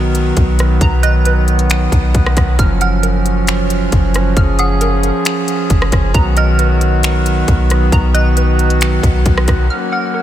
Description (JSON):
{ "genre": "hip hop, atmospheric cloud-rap", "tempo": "135 BPM", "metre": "4/4", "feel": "half-time", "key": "unclear", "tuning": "A4 = 439 Hz", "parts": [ { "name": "pipe organ, foundations", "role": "sustained chords", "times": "0.0-10.2 s", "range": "D#3 to G#4", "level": "-17 LUFS", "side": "right 1 dB", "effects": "sidechain pumping" }, { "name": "hollow square pluck", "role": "arpeggios", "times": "0.0-10.2 s", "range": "A#4 to E#6", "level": "-25 LUFS", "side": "right 2 dB", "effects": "chorus, diffuse ambient delay" }, { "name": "soft 808-style bass", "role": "bass", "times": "0.0-9.7 s", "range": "F#1 to B1", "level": "-14 LUFS", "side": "equal", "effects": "none" }, { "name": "trap drum kit", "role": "drums", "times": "0.1-9.6 s", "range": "finger snaps, hi-hat, kick drum, rim click", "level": "-16 LUFS", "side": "equal", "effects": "none" }, { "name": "dark detuned synth bell", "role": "melody", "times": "1.0-10.1 s", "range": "D#6 to F#6", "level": "-24 LUFS", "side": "right 3 dB", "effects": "chorus, tremolo, diffuse ambient delay" } ], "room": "light reverb, digital ambience", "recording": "none", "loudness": "-11 LUFS", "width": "side -12 dB against mid", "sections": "0.0-9.7 A section", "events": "none", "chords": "0.0 Bmaj7; 2.6 F#maj7; 6.1 Bmaj7; 9.7 F#maj7" }